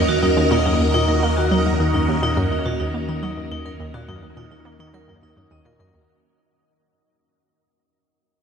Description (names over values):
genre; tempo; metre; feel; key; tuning
ambient, sequencer-driven space music; 105 BPM; 4/4; straight; Eb minor; A4 = 443 Hz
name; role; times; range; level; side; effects
phased string machine; sustained chords; 0.0-6.1 s; Eb3 to Bb4; -23 LUFS; left 1 dB; ensemble chorus, phaser
warm sub bass; bass; 0.0-6.1 s; Eb2; -24 LUFS; equal; none
wind-like tuned noise texture; texture; 0.0-6.1 s; Eb5; -28 LUFS; right 6 dB; built-in reverb
vibraphone with hard mallets; arpeggios; 0.1-5.9 s; Eb4 to Eb5; -25 LUFS; moving between left 4 dB and right 3 dB; auto-pan, ping-pong delay
analog pluck; riff; 0.1-6.0 s; Eb2 to Bb3; -24 LUFS; equal; chorus, ping-pong delay
room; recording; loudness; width
wet huge ambient reverb, RT60 8.5 s; none; -17 LUFS; side -6 dB against mid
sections
0.0-6.1 A section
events
fade-out 0.0-6.1; filter sweep on synth arpeggio sound 0.0-6.1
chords
0.0 Ebm7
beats
0.37 0.94 | 1.51 2.08 2.65 3.23 | 3.80 4.37 4.94 5.51